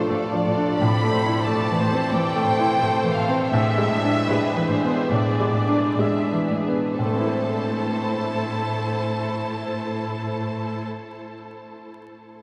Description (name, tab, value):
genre	classical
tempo	56-92 BPM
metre	4/4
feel	rubato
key	A minor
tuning	A4 = 441 Hz
part	clear baby grand piano	melody	0.0-12.4 s	A2 to C5	-25 LUFS	equal	none
part	rich studio violin section	melody	0.0-10.8 s	D5 to B5	-31 LUFS	equal	none
part	rich studio violin section	second line	0.0-10.8 s	C4 to C5	-32 LUFS	equal	none
part	rich studio viola section	accompaniment	0.0-10.8 s	A3 to E5	-32 LUFS	equal	none
part	clear studio cello section	bass	0.1-10.8 s	A2	-32 LUFS	equal	none
room	wet huge ambient reverb, RT60 8.1 s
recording	in a vast, echoing space, vinyl crackle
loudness	-22 LUFS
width	mono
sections	0.0-7.0 A section; 7.0-10.6 B section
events	slowing down 0.0-7.0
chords	0.0 Dm/A; 0.8 Am; 3.5 E7/A; 7.0 Am